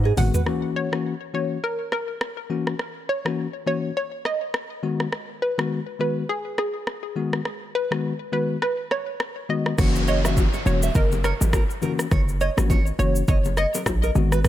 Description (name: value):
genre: afrobeats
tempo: 103 BPM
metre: 4/4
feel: swing 58% on 16ths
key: unclear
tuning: A4 = 439 Hz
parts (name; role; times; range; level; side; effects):
- hard-hitting 808-style bass; bass; 0.0-0.3, 9.8-14.5 s; E1 to G#2; -22 LUFS; equal; none
- nylon-string guitar; riff; 0.1-0.4, 9.8-14.5 s; G#4 to E5; -30 LUFS; right 7 dB; ping-pong delay
- analog pluck; melody; 0.2-13.7 s; G#4 to F#5; -28 LUFS; equal; chorus, ping-pong delay
- bell-like tine electric piano; accompaniment; 0.2-14.4 s; D#3 to F#4; -26 LUFS; left 5 dB; none
- afro-pop drum kit; drums; 0.2-14.5 s; crash cymbal, hi-hat, kick drum, rim click, shaker, toms; -25 LUFS; equal; none
- bongos and congas; percussion; 0.2-0.3, 9.8-14.5 s; none; -31 LUFS; left 5 dB; none
- downlifter; sound effects; 9.8-14.4 s; none; -34 LUFS; right 1 dB; none
room: digital ambience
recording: none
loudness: -21 LUFS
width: side -12 dB against mid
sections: 0.5-9.8 A section; 9.8-14.5 B section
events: drum fill 0.0-0.5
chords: 0.5 F#7; 4.8 G#m7; 9.8 F#7